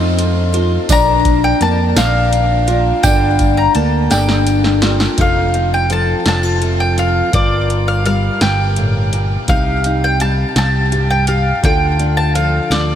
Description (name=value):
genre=indie folk with a building arrangement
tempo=56 BPM (dotted quarters)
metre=6/8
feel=straight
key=G minor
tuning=A4 = 443 Hz
part: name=mandolin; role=melody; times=0.0-13.0 s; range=D5 to C6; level=-18 LUFS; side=left 1 dB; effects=ping-pong delay
part: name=picked twelve-string acoustic guitar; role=accompaniment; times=0.0-5.2 s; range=G2 to Bb4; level=-20 LUFS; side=left 6 dB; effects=lush chorus
part: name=dark upright piano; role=arpeggios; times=0.0-5.2 s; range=Bb3 to F4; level=-22 LUFS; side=right 5 dB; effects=ping-pong delay
part: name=picked electric bass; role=bass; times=0.0-13.0 s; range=F1 to F2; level=-16 LUFS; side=equal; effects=none
part: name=electro analog drum machine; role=drums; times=0.2-12.9 s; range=hi-hat, kick drum, snare drum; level=-20 LUFS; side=equal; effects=none
part: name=tambourine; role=percussion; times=0.9-5.1 s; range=none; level=-32 LUFS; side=right 9 dB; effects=none
part: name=fingerpicked steel-string acoustic guitar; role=accompaniment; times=5.2-13.0 s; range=F2 to Bb4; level=-20 LUFS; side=left 1 dB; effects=wide subtle chorus
room=moderate huge ambient reverb, RT60 7.7 s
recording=dreamy mix soaked in reverb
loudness=-12 LUFS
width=side -10 dB against mid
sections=0.0-5.2 A section; 5.2-13.0 B section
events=drum fill 4.1-5.2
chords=0.0 F; 0.9 Bb; 3.0 Gmadd9; 5.2 F7; 7.3 Gm7; 9.5 Cm; 11.6 Dm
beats=| 0.90 1.97 | 3.04 4.11 | 5.18 6.26 | 7.33 8.41 | 9.48 10.56 | 11.63 12.71